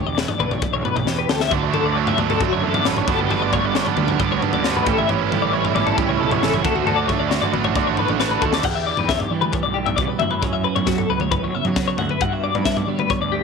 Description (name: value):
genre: math rock and midwest emo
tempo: 135 BPM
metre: 4/4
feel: straight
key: D major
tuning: A4 = 440 Hz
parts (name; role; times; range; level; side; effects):
- twelve-string electric guitar; accompaniment; 0.0-13.4 s; D2 to G4; -26 LUFS; right 13 dB; none
- twelve-string electric guitar; arpeggios; 0.0-13.4 s; F#4 to F#5; -22 LUFS; left 11 dB; tremolo
- fuzz picked electric bass; bass; 0.1-13.4 s; E1 to G3; -27 LUFS; right 1 dB; overdrive
- crisp fusion drum kit; drums; 0.2-13.2 s; crash cymbal, kick drum, snare drum, toms; -24 LUFS; left 3 dB; none
- overdriven electric guitar; riff; 1.5-8.6 s; G2 to F#4; -22 LUFS; right 17 dB; none
room: studio reverb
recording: 1960s-style stereo with parts hard left and right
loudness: -17 LUFS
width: side -5 dB against mid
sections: 0.0-8.6 A section; 8.6-13.4 B section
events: drum fill 1.1-1.5, 8.2-8.6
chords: 0.0 Em7; 1.5 Dmaj7; 3.1 Gmaj7; 4.9 A7; 6.6 Dmaj7; 8.6 Em7; 10.2 F#7sus4; 12.2 Gmaj7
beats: 0.17 0.62 1.07 | 1.51 1.96 2.40 2.85 | 3.30 3.74 4.19 4.63 | 5.08 5.53 5.97 6.42 | 6.86 7.31 7.75 8.20 | 8.64 9.09 9.54 9.98 | 10.43 10.88 11.32 11.77 | 12.21 12.66 13.10